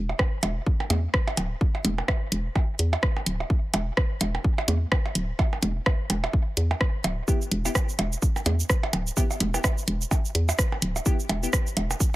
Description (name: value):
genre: minimal techno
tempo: 127 BPM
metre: 4/4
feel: swing 58% on 16ths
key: E minor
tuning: A4 = 440 Hz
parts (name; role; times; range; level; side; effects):
- hollow knocking FM bass; bass; 0.0-11.9 s; D1 to E2; -25 LUFS; equal; sidechain pumping
- percussion blips; percussion; 0.1-12.0 s; none; -31 LUFS; right 3 dB; dub echo
- electronic kick drum; drums; 0.2-12.1 s; none; -24 LUFS; equal; none
- house drum kit; drums; 0.2-12.1 s; hi-hat, rim click, shaker; -28 LUFS; right 1 dB; none
- wavetable chord stab; stabs; 7.3-11.5 s; B3 to G4; -34 LUFS; left 3 dB; dub echo
room: digital ambience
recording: none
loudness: -23 LUFS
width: side -17 dB against mid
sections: 0.0-12.2 A section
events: none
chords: none